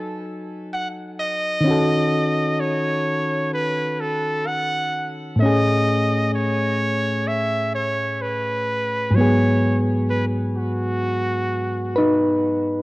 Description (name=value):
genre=R&B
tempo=64 BPM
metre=4/4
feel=swing 54% on 16ths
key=unclear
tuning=A4 = 437 Hz
part: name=warm trumpet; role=melody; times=0.0-12.4 s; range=F#4 to F#5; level=-24 LUFS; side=right 1 dB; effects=cassette tape, tape echo
part: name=soft electric-piano-like synth keys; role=accompaniment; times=0.0-12.8 s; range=G#2 to G#5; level=-21 LUFS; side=equal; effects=chorus, cassette tape
room=light reverb, small room reverb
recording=home recording on cassette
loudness=-19 LUFS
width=side -20 dB against mid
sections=0.0-12.8 A section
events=none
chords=0.0 F#m69; 1.6 D#m7b5; 5.4 Amaj7; 9.1 G#m7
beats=0.71 | 1.65 2.59 3.52 4.46 | 5.40 6.34 7.27 8.21 | 9.15 10.09 11.02 11.96